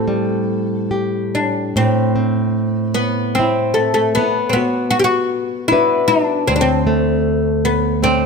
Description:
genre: celtic folk, Celtic slow air.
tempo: 70-80 BPM.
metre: 3/4.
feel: rubato.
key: A dorian.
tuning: A4 = 440 Hz.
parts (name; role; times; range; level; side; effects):
oud; melody; 0.0-8.3 s; A3 to A4; -18 LUFS; left 2 dB; none.
nylon-string guitar; accompaniment; 0.0-8.3 s; D2 to B4; -17 LUFS; right 1 dB; none.
room: moderate concert hall reverb, RT60 2.0 s.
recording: close, detailed microphones.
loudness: -15 LUFS.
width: side -4 dB against mid.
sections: 0.0-1.8 A section; 1.8-8.3 B section.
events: none.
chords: 0.0 Am7; 1.8 Am; 4.2 Bm; 6.5 D5.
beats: 0.11 0.93 | 1.76 2.57 3.38 | 4.17 4.94 5.70 | 6.48 7.25 8.04.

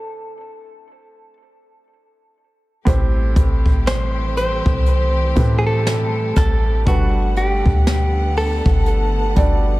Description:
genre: contemporary R&B.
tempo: 60 BPM.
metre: 4/4.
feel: swing 58% on 16ths.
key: A dorian.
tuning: A4 = 440 Hz.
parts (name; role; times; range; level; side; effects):
direct-recorded clean electric guitar; melody; 0.0-9.3 s; F#4 to C5; -23 LUFS; equal; tape echo.
felt-muted upright piano; accompaniment; 2.9-9.8 s; A2 to F#5; -26 LUFS; right 3 dB; tape echo.
rich studio string section; sustained chords; 2.9-9.8 s; D3 to F#5; -28 LUFS; equal; none.
clean 808-style bass; bass; 2.9-9.8 s; G1 to A2; -18 LUFS; equal; none.
jazz brush drum kit; drums; 2.9-9.6 s; hi-hat, kick drum, rim click, snare drum; -19 LUFS; equal; none.
room: little or no reverb.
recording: echo-heavy mix.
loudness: -15 LUFS.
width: side -18 dB against mid.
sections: 0.0-2.9 A section; 2.9-9.8 B section.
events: stop 0.0-2.9.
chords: 0.0 N.C.; 2.9 Am7; 6.9 Gmaj9.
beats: 0.87 1.87 | 2.87 3.87 4.87 5.87 | 6.87 7.87 8.87.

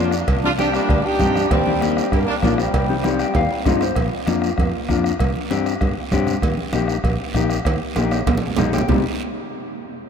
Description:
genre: latin, cumbia.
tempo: 195 BPM.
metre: 4/4.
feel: straight.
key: C minor.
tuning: A4 = 440 Hz.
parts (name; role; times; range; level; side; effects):
mellow saxophone section; melody; 0.0-3.7 s; G3 to G4; -24 LUFS; equal; slapback echo.
bright trombone; second line; 0.0-3.7 s; G3 to D4; -27 LUFS; right 3 dB; none.
mellow electric guitar; accompaniment; 0.0-9.0 s; Bb3 to G5; -23 LUFS; left 7 dB; none.
fingered electric bass; bass; 0.0-9.0 s; Bb1 to G2; -23 LUFS; equal; none.
bombo; percussion; 0.1-9.0 s; none; -23 LUFS; equal; none.
guiro; percussion; 0.1-9.0 s; none; -36 LUFS; right 8 dB; none.
congas; percussion; 0.3-9.0 s; none; -29 LUFS; right 3 dB; none.
cowbell and timbales; percussion; 0.3-9.0 s; none; -30 LUFS; right 7 dB; none.
room: moderate cathedral reverb, RT60 5.9 s.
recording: in a vast, echoing space.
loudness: -17 LUFS.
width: side -7 dB against mid.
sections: 0.0-4.0 A section; 4.0-8.9 B section; 8.9-10.1 C section.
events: clean electric guitar fill 3.1-4.0, 8.4-8.9; drum fill 3.4-4.0, 7.7-8.9.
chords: 0.3 Csus2; 1.5 Eb; 2.7 Cm; 4.0 Bb; 5.2 Csus2; 6.4 Eb; 8.9 Cm.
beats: | 0.28 0.59 0.90 1.21 | 1.51 1.82 2.13 2.44 | 2.74 3.05 3.36 3.67 | 3.97 4.28 4.59 4.90 | 5.20 5.51 5.82 6.13 | 6.43 6.74 7.05 7.36 | 7.66 7.97 8.28 8.59 | 8.89.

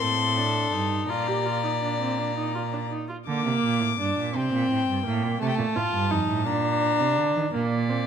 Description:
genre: classical, baroque-style fugue for string quartet.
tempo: 56 BPM (dotted quarters).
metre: 6/8.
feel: straight.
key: Bb major.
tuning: A4 = 440 Hz.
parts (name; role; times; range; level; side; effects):
warm violin; melody; 0.0-7.5 s; G5 to D6; -28 LUFS; left 11 dB; none.
warm violin; second line; 0.0-2.9, 7.5-8.1 s; A4 to D5; -31 LUFS; left 4 dB; none.
warm viola; accompaniment; 0.0-8.1 s; A3 to G4; -26 LUFS; right 2 dB; none.
warm cello; bass; 0.0-8.1 s; F2 to Eb3; -28 LUFS; right 5 dB; none.
room: moderate recital hall reverb, RT60 1.6 s.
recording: none.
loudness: -23 LUFS.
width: side -8 dB against mid.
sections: 0.0-3.3 A section; 3.3-7.5 B section.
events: none.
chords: 0.0 Cm69; 1.1 Bb; 4.4 C5; 5.4 F7; 6.5 Bb; 7.5 Bbadd9.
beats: 0.01 | 1.09 2.19 | 3.27 4.35 | 5.41 6.46 | 7.53.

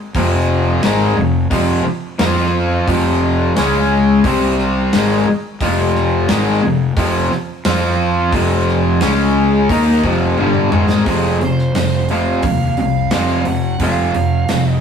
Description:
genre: hard rock.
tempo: 88 BPM.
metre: 4/4.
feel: straight.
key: F minor.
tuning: A4 = 440 Hz.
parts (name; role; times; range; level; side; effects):
gated 80s drum kit; drums; 0.1-14.6 s; hi-hat, kick drum, snare drum, toms; -21 LUFS; equal; none.
cranked stack guitar; riff; 0.2-14.8 s; F2 to F4; -20 LUFS; right 3 dB; overdrive.
overdriven semi-hollow guitar; riff; 0.2-14.8 s; F2 to F4; -16 LUFS; left 3 dB; none.
fuzz fingered electric bass; bass; 0.2-14.8 s; F1 to F2; -20 LUFS; equal; overdrive.
smooth overdriven lead guitar; melody; 11.1-14.8 s; Ab4 to Gb5; -22 LUFS; right 8 dB; none.
room: moderate stone room reverb, RT60 1.3 s.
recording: rough rehearsal-room recording, warm saturation, faint mains hum.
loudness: -13 LUFS.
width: side -7 dB against mid.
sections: 0.0-11.1 A section; 11.1-14.8 B section.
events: drum fill 10.4-11.1.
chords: 0.0 Fm; 3.6 Db5; 4.2 C5; 4.9 Fm; 9.0 Db5; 9.7 Fm; 11.1 F5.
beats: | 0.15 0.83 1.51 2.19 | 2.88 3.56 4.24 4.93 | 5.61 6.29 6.97 7.66 | 8.34 9.02 9.71 10.39 | 11.07 11.76 12.44 13.12 | 13.80 14.49.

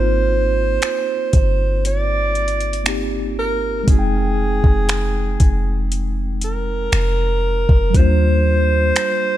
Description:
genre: contemporary R&B.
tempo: 59 BPM.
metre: 4/4.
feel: straight.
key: unclear.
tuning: A4 = 440 Hz.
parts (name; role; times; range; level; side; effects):
warm alto saxophone; melody; 0.0-9.4 s; Ab4 to D5; -21 LUFS; right 3 dB; ping-pong delay.
mellow tine electric piano; accompaniment; 0.0-9.4 s; Gb3 to G5; -25 LUFS; left 1 dB; medium stereo tremolo.
clean 808-style bass; bass; 0.0-8.9 s; F1 to Eb2; -19 LUFS; equal; none.
smooth R&B drum kit; drums; 0.8-9.2 s; finger snaps, hi-hat, kick drum; -17 LUFS; equal; none.
room: little or no reverb.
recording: none.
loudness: -15 LUFS.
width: side -13 dB against mid.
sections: 0.0-9.4 A section.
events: none.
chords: 0.0 Ab69; 3.9 Fm7; 7.9 Ebmaj9.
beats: 0.82 1.84 2.86 | 3.88 4.89 5.91 6.93 | 7.94 8.96.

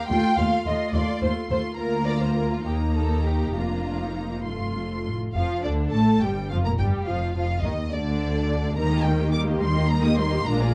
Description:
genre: quick classical-period movement for string orchestra.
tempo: 65-72 BPM (dotted quarters).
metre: 6/8.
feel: rubato.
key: Bb major.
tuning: A4 = 441 Hz.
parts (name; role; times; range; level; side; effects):
rich studio violin section; melody; 0.0-10.7 s; D5 to Eb6; -35 LUFS; equal; none.
warm symphonic violin section; second line; 0.0-10.7 s; D4 to G5; -32 LUFS; equal; none.
rich symphonic viola section; accompaniment; 0.0-10.7 s; D3 to G4; -30 LUFS; equal; none.
rich symphonic double bass section; bass; 0.1-10.7 s; F1 to Eb2; -29 LUFS; equal; none.
warm symphonic cello section; bass; 0.1-10.7 s; D2 to Eb3; -30 LUFS; equal; none.
room: light reverb.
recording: dark, warm production.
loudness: -24 LUFS.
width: mono.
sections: 0.0-5.4 A section; 5.4-10.7 B section.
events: none.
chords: 0.1 F7/Eb; 1.8 Bb/D; 2.7 Eb5; 3.6 Bb/F; 4.5 F; 5.4 Bb (rootless); 7.1 Ebsus2/F; 7.9 N.C.; 8.8 Eb.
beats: | 0.10 0.94 | 1.78 2.65 | 3.56 4.47 | 5.36 6.23 | 7.08 7.93 | 8.78 9.61 | 10.46.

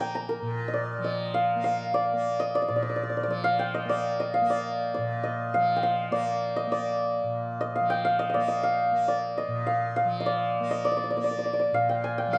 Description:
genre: indian classical.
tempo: 101 BPM.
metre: 7/4.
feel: straight.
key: Bb raga khamaj.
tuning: A4 = 439 Hz.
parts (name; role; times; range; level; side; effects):
santur; melody; 0.0-12.4 s; Bb4 to Bb5; -28 LUFS; equal; none.
tanpura; drone; 0.0-12.4 s; Bb2 to Bb3; -37 LUFS; equal; none.
room: moderate recital hall reverb, RT60 1.5 s.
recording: dark, warm production.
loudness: -27 LUFS.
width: mono.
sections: 0.0-12.4 A section.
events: speeding up 0.0-12.4.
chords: none.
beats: 0.13 0.73 1.34 1.94 | 2.54 3.14 3.74 4.34 4.93 5.53 6.12 | 6.72 7.31 7.90 8.49 9.08 9.67 10.26 | 10.85 11.43 12.02.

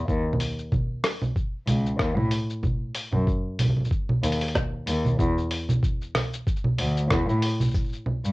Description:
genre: folktronica.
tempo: 94 BPM.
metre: 4/4.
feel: swing 56% on 16ths.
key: unclear.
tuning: A4 = 442 Hz.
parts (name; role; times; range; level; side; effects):
dark cello; bass; 0.1-8.3 s; C#2 to A2; -26 LUFS; equal; none.
electronic kick drum; drums; 0.1-7.9 s; none; -26 LUFS; equal; none.
lo-fi sampler-style drum kit; drums; 0.1-8.3 s; congas, hi-hat, rim click, shaker; -26 LUFS; right 1 dB; none.
room: light reverb.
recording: home recording on cassette.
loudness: -23 LUFS.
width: side -21 dB against mid.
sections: 0.0-5.2 A section; 5.2-8.3 B section.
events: none.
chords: none.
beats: | 0.09 0.72 1.36 2.00 | 2.64 3.28 3.91 4.55 | 5.19 5.83 6.47 7.11 | 7.74.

